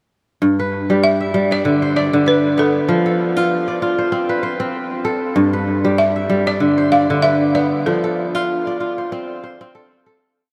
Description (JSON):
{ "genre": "west african traditional, West African string and xylophone music", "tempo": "96 BPM", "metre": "4/4", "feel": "swing 56% on 16ths", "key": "G mixolydian", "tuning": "A4 = 440 Hz", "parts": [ { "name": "kora", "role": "arpeggios", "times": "0.4-10.5 s", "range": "G2 to E5", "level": "-18 LUFS", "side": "equal", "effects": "diffuse ambient delay" }, { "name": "balafon", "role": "melody", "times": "1.0-9.7 s", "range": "A4 to F5", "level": "-23 LUFS", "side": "equal", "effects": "none" } ], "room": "wet huge ambient reverb, RT60 9.3 s", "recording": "dreamy mix soaked in reverb", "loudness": "-17 LUFS", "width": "mono", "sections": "0.4-10.4 A section", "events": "fade-out 7.9-10.4", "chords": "0.4 G; 2.9 F; 5.4 G; 7.9 F" }